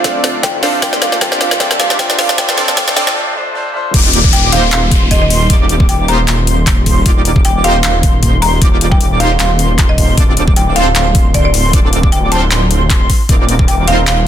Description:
future bass; 154 BPM; 4/4; swing 54% on 16ths, half-time; Eb lydian; A4 = 440 Hz
buzzing marimba with medium hard mallets; melody; 0.0-14.2 s; D5 to Bb5; -18 LUFS; right 1 dB; sidechain pumping, tape echo
bright grand piano; accompaniment; 0.0-4.0 s; A3 to D5; -21 LUFS; left 2 dB; sidechain pumping, digital delay
rich studio string section; sustained chords; 0.0-3.1 s; D3 to G4; -26 LUFS; equal
supersaw stab; riff; 0.0-14.3 s; Bb3 to D5; -19 LUFS; right 1 dB; sidechain pumping, digital delay
wide detuned saw bass; bass; 0.0-14.3 s; D1 to Eb1; -14 LUFS; equal; chorus, sidechain pumping
electronic kick drum; drums; 0.0-13.7 s; -11 LUFS; equal
trap drum kit; drums; 0.0-14.2 s; crash cymbal, handclaps, hi-hat, snare drum; -16 LUFS; left 2 dB
riser and downlifter; sound effects; 0.4-7.1 s; -20 LUFS; left 2 dB
airy dreamy lead; arpeggios; 3.9-14.3 s; C6 to D6; -21 LUFS; equal; chorus, vintage 12-bit sampler grit, sidechain pumping
light reverb, digital ambience; dense, heavily limited modern master, high-pass filter; -9 LUFS; side -10 dB against mid
0.0-3.9 A section; 3.9-14.3 B section
build-up 0.0-3.9; drum fill 0.0-3.2; filter sweep on supersaw synth 0.0-3.9; break 3.2-3.9; drop 3.9-14.3
0.0 Dm7; 0.6 Cmadd9/Eb; 3.9 Ebmaj9; 10.2 Dm7; 13.1 Cm11/Eb

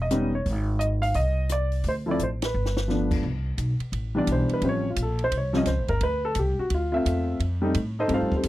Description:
jazz piano trio; 173 BPM; 4/4; swing 64% on 8ths; C major; A4 = 440 Hz
warm upright piano; melody; 0.0-8.5 s; E3 to F5; -25 LUFS; equal
upright bass; bass; 0.0-8.5 s; E1 to A2; -26 LUFS; equal
compact cocktail drum kit; drums; 0.1-8.5 s; crash cymbal, hi-hat, kick drum, ride cymbal, rim click, snare drum; -31 LUFS; equal
little or no reverb; dry, close 1970s-style studio recording; -23 LUFS; side -16 dB against mid
0.0-3.2 A section; 3.2-8.5 B section
band accent 2.4; drum fill 2.5-2.9; upright piano solo 3.2-8.5
0.5 Ab; 1.8 D7(no3); 2.5 G7; 3.2 Cmaj7; 4.6 A7alt; 6.0 Dm7; 7.4 F9

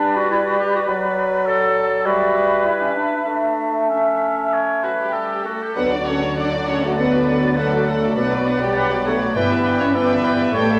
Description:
quick classical-period movement for symphony orchestra; 99 BPM; 4/4; uneven beats, rubato; D major; A4 = 445 Hz
concert flute; second line; 0.0-10.8 s; F#4 to E5; -29 LUFS; equal
warm clarinet; second line; 0.0-10.8 s; C#4 to D5; -27 LUFS; equal
warm oboe; second line; 0.0-10.8 s; F#4 to E5; -27 LUFS; equal
warm bassoon; accompaniment; 0.0-10.8 s; E3 to A3; -25 LUFS; equal
warm studio violin section; second line; 4.8-10.8 s; F#4 to D5; -29 LUFS; equal
dark French horn section; sustained chords; 4.8-10.8 s; F#3 to D4; -24 LUFS; equal
rich chamber violin section; melody; 5.8-10.8 s; D5 to G5; -31 LUFS; equal
warm chamber viola section; accompaniment; 5.8-10.8 s; D4 to D5; -29 LUFS; equal
warm chamber double bass section; bass; 5.8-10.8 s; G1 to D2; -34 LUFS; equal
warm symphonic cello section; bass; 5.8-10.8 s; G2 to D3; -29 LUFS; equal
wet recital hall reverb, RT60 1.3 s; -19 LUFS; mono
0.0-5.8 A section; 5.8-10.8 B section
0.0 G; 0.9 D/F#; 2.1 Em/G; 3.3 A; 5.8 D; 8.2 Bm; 9.4 Em7/G

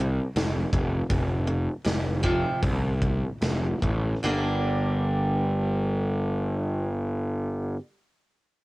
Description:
quiet-loud alternative rock; 72-83 BPM; 4/4; straight; G minor; A4 = 442 Hz
picked steel-string acoustic guitar; arpeggios; 0.0-7.8 s; F2 to G4; -30 LUFS; right 1 dB; cassette tape
fuzz picked electric bass; bass; 0.0-7.7 s; F1 to C2; -26 LUFS; equal; overdrive
big rock drum kit; drums; 0.4-4.0 s; hi-hat, kick drum, snare drum; -28 LUFS; equal; cassette tape
little or no reverb; home recording on cassette; -24 LUFS; side -20 dB against mid
0.0-4.2 A section; 4.2-7.6 B section
slowing down 0.0-4.2
0.0 F5; 4.2 Gm

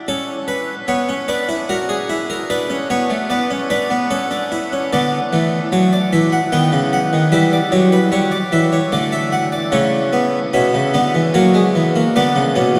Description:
classical, baroque-style 3-part fugue for harpsichord; 75 BPM; 3/4; straight; D major; A4 = 439 Hz
harpsichord; solo; 0.0-12.8 s; A2 to G5; -17 LUFS; equal
wet huge ambient reverb, RT60 8.2 s; in a vast, echoing space; -17 LUFS; mono
0.0-4.9 A section; 4.9-12.8 B section
0.1 A/C#; 1.7 F#7; 2.5 Bm; 4.1 A/C#; 4.9 D; 6.5 B; 7.3 Em; 8.9 D; 9.7 A/C#; 11.3 F#7; 12.2 Bm

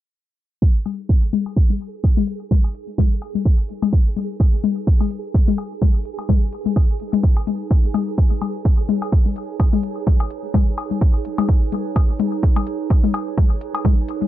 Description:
minimal techno; 127 BPM; 4/4; swing 56% on 16ths; G# minor; A4 = 440 Hz
electronic kick drum; drums; 0.6-14.0 s; -15 LUFS; right 1 dB; overdrive
pulsing gated texture; texture; 1.4-14.3 s; G#4; -34 LUFS; right 7 dB; chorus, built-in reverb, sidechain pumping
warbly tape-like pad; texture; 0.6-14.3 s; D#4 to G#5; -32 LUFS; right 8 dB; chorus, built-in reverb, sidechain pumping
electronic hi-hat; drums; 0.9-14.2 s; -50 LUFS; left 1 dB; overdrive
electronic toms and cowbell; percussion; 0.9-14.3 s; -23 LUFS; left 8 dB; ping-pong delay
little or no reverb; low-pass filter; -17 LUFS; side -14 dB against mid
0.6-14.3 A section
fade-in on ambient pad 0.6-14.3; filter sweep 0.6-14.3
0.6 G#m

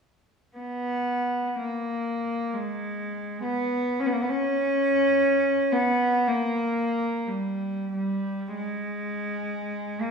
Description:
classical, free, expressive piece for unaccompanied cello; 39-69 BPM; 4/4; rubato; G# minor; A4 = 439 Hz
rich cello; solo; 0.6-10.1 s; G3 to C#4; -24 LUFS; equal
wet recital hall reverb, RT60 1.6 s; heard from further back in the room; -24 LUFS; side -5 dB against mid
0.6-8.5 A section; 8.5-10.1 B section

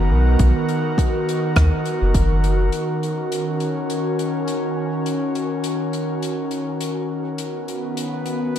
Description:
ambient dub; 103 BPM; 4/4; swing 55% on 16ths; Eb minor; A4 = 440 Hz
airy breathy pad; sustained chords; 0.0-8.6 s; D#3 to Bb4; -22 LUFS; equal; chorus
soft dub sub bass; bass; 0.0-2.7 s; F#1 to D#2; -16 LUFS; equal
electronic kick drum; drums; 0.4-2.3 s; -19 LUFS; equal; overdrive
soft-mallet drum kit; drums; 0.4-8.6 s; hi-hat, rim click; -30 LUFS; left 2 dB
light reverb, studio reverb; dark, warm production; -19 LUFS; side -10 dB against mid
0.0-2.7 A section; 2.7-8.6 B section
0.0 Bmaj7; 2.7 Ebm7; 7.4 Bmaj7

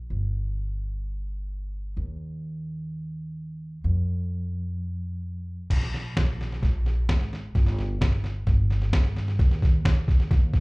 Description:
indie folk with a building arrangement; 129 BPM; 4/4; straight; A4 = 444 Hz
upright bass; bass; 0.0-10.6 s; G1 to G2; -27 LUFS; equal
lo-fi sampler-style drum kit; drums; 5.7-10.6 s; crash cymbal, kick drum, snare drum; -22 LUFS; equal
little or no reverb; live gig heard through the venue's PA, club reverb; -24 LUFS; side -28 dB against mid
0.0-5.7 A section; 5.7-10.6 B section
build-up 5.7-10.6; drum fill 5.7-10.6

